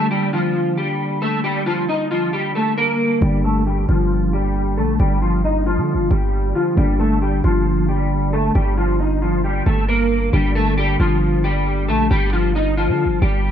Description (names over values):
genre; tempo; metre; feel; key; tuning
hip hop, trap; 135 BPM; 4/4; half-time; G minor; A4 = 440 Hz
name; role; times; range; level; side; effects
electric guitar at the edge of break-up; melody; 0.0-13.5 s; F3 to Eb5; -19 LUFS; left 1 dB; ensemble chorus, low-pass filter, analog delay
muted felt-like synth keys; accompaniment; 0.0-13.5 s; D3 to D4; -24 LUFS; equal; chorus, low-pass filter, analog delay
hard-hitting 808-style bass; bass; 3.2-13.5 s; G1 to D3; -19 LUFS; equal; none
room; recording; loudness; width
light reverb; echo-heavy mix; -16 LUFS; side -9 dB against mid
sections
0.0-3.2 A section; 3.2-13.5 B section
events
filter sweep 3.2-10.3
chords
0.0 Gm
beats
0.11 0.55 1.00 | 1.44 1.89 2.33 2.77 | 3.22 3.66 4.11 4.55 | 5.00 5.44 5.88 6.33 | 6.77 7.22 7.66 8.11 | 8.55 9.00 9.44 9.88 | 10.33 10.77 11.22 11.66 | 12.11 12.55 13.00 13.44